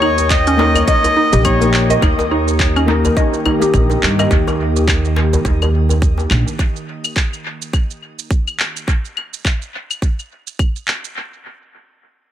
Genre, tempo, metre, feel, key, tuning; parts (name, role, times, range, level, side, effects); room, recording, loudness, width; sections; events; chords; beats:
organic downtempo; 105 BPM; 4/4; swing 58% on 16ths; Eb major; A4 = 440 Hz
rich kamancheh; melody; 0.0-1.9 s; Db5 to Eb5; -19 LUFS; left 1 dB; analog delay, shimmer reverb
felt-muted upright piano; accompaniment; 0.0-4.3 s; Bb3 to Bb4; -21 LUFS; left 5 dB; sidechain pumping, low-pass filter, analog delay, shimmer reverb
mallet-like synth pluck; arpeggios; 0.0-4.3 s; Db4 to Eb5; -21 LUFS; right 2 dB; chorus, dub echo, shimmer reverb
upright bass; bass; 0.0-6.4 s; Bb1 to G2; -16 LUFS; equal; sidechain pumping
organic electronic drum kit; drums; 0.0-11.1 s; claves, handclaps, hi-hat, shaker; -22 LUFS; left 1 dB; analog delay
djembe; percussion; 0.2-6.3 s; -24 LUFS; left 1 dB; analog delay
electronic kick drum; drums; 0.3-10.7 s; -16 LUFS; right 1 dB
warm analog pad; sustained chords; 2.5-8.8 s; Eb3 to G4; -22 LUFS; right 2 dB; chorus, sidechain pumping, shimmer reverb
moderate spring reverb, RT60 2.4 s; echo-heavy mix; -13 LUFS; side -11 dB against mid
0.0-2.0 A section; 2.0-11.2 B section
filter sweep on synth pluck 2.0-4.3; filter sweep on analog synth pad 2.0-8.9
0.0 Eb
0.30 0.88 1.45 | 2.02 2.59 3.16 3.73 | 4.30 4.88 5.45 6.02 | 6.59 7.16 7.73 8.30 | 8.88 9.45 10.02 10.59